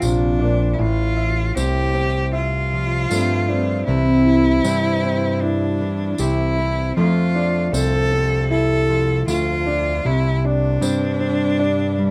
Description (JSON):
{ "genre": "acoustic folk duo or small band", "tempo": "78 BPM", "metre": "4/4", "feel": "straight", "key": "F major", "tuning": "A4 = 440 Hz", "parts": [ { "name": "clear cello", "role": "melody", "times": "0.0-12.1 s", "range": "D4 to A4", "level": "-25 LUFS", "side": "equal", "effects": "none" }, { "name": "fingerpicked steel-string acoustic guitar", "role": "accompaniment", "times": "0.0-12.1 s", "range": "F2 to D4", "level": "-26 LUFS", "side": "equal", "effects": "none" }, { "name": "felt-muted upright piano", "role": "arpeggios", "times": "0.0-12.1 s", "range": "C4 to E5", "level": "-27 LUFS", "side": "equal", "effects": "none" }, { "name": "fat analog bass", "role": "bass", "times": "0.0-12.1 s", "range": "A1 to G2", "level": "-23 LUFS", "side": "equal", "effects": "none" }, { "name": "tambourine", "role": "percussion", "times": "0.0-11.0 s", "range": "none", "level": "-34 LUFS", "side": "equal", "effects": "none" } ], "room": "light reverb", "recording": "none", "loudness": "-19 LUFS", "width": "mono", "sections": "0.0-12.1 A section", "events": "none", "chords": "0.0 Bbsus2; 0.8 Fmaj7/A; 3.9 C; 7.0 F6; 10.1 Csus2", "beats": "0.02 | 0.79 1.56 2.33 3.10 | 3.88 4.65 5.42 6.19 | 6.96 7.73 8.51 9.28 | 10.05 10.82 11.60" }